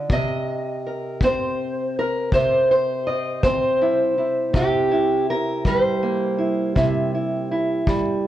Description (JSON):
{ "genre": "acoustic country blues, solo or duo", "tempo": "54 BPM (dotted quarters)", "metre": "12/8", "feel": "straight", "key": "C mixolydian", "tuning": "A4 = 440 Hz", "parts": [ { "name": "fingerpicked steel-string acoustic guitar", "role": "melody", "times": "0.0-8.3 s", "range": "C3 to Eb5", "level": "-19 LUFS", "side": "right 1 dB", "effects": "plate reverb" }, { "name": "kick drum", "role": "drums", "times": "0.1-8.0 s", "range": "none", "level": "-23 LUFS", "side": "left 1 dB", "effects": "none" } ], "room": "wet small room reverb, RT60 0.5 s", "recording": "worn, warbling old tape, cassette tape, warbly pitch drift", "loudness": "-19 LUFS", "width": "side -12 dB against mid", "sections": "0.0-8.3 A section", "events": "none", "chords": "0.1 C7" }